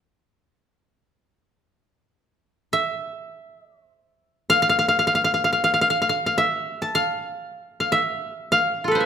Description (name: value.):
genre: japanese traditional, Japanese chamber music.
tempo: free time.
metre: none.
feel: none.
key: unclear.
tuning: A4 = 440 Hz.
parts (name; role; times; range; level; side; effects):
koto; solo; 0.0-9.1 s; F4 to A5; -19 LUFS; equal; none.
room: moderate recital hall reverb, RT60 1.7 s.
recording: minimal, uncompressed stereo recording.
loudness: -19 LUFS.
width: side -8 dB against mid.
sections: 0.0-9.1 A section.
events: slowing down 3.7-9.1.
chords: none.